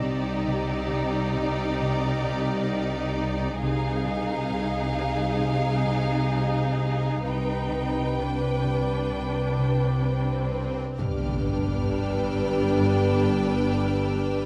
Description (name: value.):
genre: cinematic, suspense film score.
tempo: 66 BPM.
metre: 4/4.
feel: straight.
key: unclear.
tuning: A4 = 439 Hz.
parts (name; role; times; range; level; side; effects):
rich studio violin section; melody; 0.0-14.5 s; D5 to G5; -37 LUFS; equal; none.
clear studio violin section; second line; 0.0-14.5 s; G4 to B4; -35 LUFS; equal; none.
clear studio viola section; accompaniment; 0.0-14.5 s; D4 to Eb4; -33 LUFS; equal; none.
concert harp; riff; 0.0-14.5 s; G2 to C4; -34 LUFS; equal; none.
clear studio cello section; bass; 0.0-14.5 s; G2 to C3; -34 LUFS; equal; none.
rich studio double bass section; bass; 0.0-14.5 s; G1 to C2; -32 LUFS; equal; none.
rich studio violin section; texture; 0.0-3.1, 11.0-14.5 s; D6 to Bb6; -44 LUFS; equal; none.
swell and impact; sound effects; 9.8-14.5 s; none; -38 LUFS; equal; none.
dark French horn section; sustained chords; 11.0-14.5 s; B3 to G4; -32 LUFS; equal; none.
dark trombone section; sustained chords; 11.0-14.5 s; D3 to G3; -33 LUFS; equal; none.
room: moderate scoring stage reverb, RT60 1.5 s.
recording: none.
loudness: -26 LUFS.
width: mono.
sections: 0.0-11.0 A section; 11.0-14.5 B section.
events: impact 11.0-14.5.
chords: 0.0 Cmadd9; 7.2 G/C; 11.0 G.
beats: | 0.01 0.91 1.81 2.71 | 3.61 4.50 5.40 6.32 | 7.25 8.19 9.12 10.05 | 10.99 11.90 12.81 13.71.